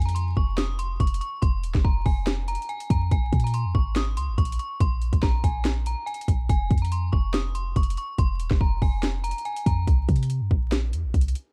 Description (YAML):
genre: hip hop, trap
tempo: 142 BPM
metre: 4/4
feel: half-time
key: F minor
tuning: A4 = 440 Hz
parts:
  - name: metallic FM bell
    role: melody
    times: 0.0-9.8 s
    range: Ab5 to Eb6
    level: -35 LUFS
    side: equal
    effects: chorus, low-pass filter
  - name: clean 808-style bass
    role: bass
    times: 0.0-11.3 s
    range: Eb1 to C3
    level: -28 LUFS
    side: equal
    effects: none
  - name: trap drum kit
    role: drums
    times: 0.0-11.5 s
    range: hi-hat, kick drum, snare drum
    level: -26 LUFS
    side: equal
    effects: none
room: little or no reverb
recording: dark, warm production, vinyl crackle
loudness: -25 LUFS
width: mono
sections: 0.0-11.5 A section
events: none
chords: 0.0 F5; 3.1 Bb7(no3); 6.5 F5; 9.9 C7(no3)